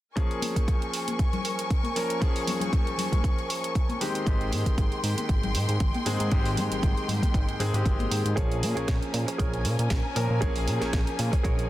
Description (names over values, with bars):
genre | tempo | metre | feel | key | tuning
nu-disco, nu disco | 117 BPM | 4/4 | swing 55% on 16ths | Bb dorian | A4 = 440 Hz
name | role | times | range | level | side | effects
clear grand piano | accompaniment | 0.2-11.7 s | Eb3 to Bb4 | -32 LUFS | left 1 dB | sidechain pumping, slapback echo
warm studio string section | sustained chords | 0.2-11.7 s | Ab3 to Db6 | -34 LUFS | left 1 dB | sidechain pumping
electronic kick drum | drums | 0.2-11.6 s | none | -25 LUFS | equal | none
house drum kit | drums | 0.2-11.7 s | hi-hat, snare drum | -34 LUFS | right 3 dB | none
congas | percussion | 0.4-8.1 s | none | -36 LUFS | left 4 dB | none
fat analog bass | bass | 4.3-11.7 s | Ab1 to Bb2 | -28 LUFS | equal | sidechain pumping
direct-recorded clean electric guitar | riff | 8.4-11.7 s | Ab4 to Db5 | -35 LUFS | right 4 dB | lush chorus, low-pass filter
room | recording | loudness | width
little or no reverb | dense, heavily limited modern master | -24 LUFS | side -15 dB against mid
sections
0.2-8.4 A section; 8.4-11.7 B section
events
none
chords
0.2 Bbm7; 4.0 Abmaj7; 8.4 Bbm7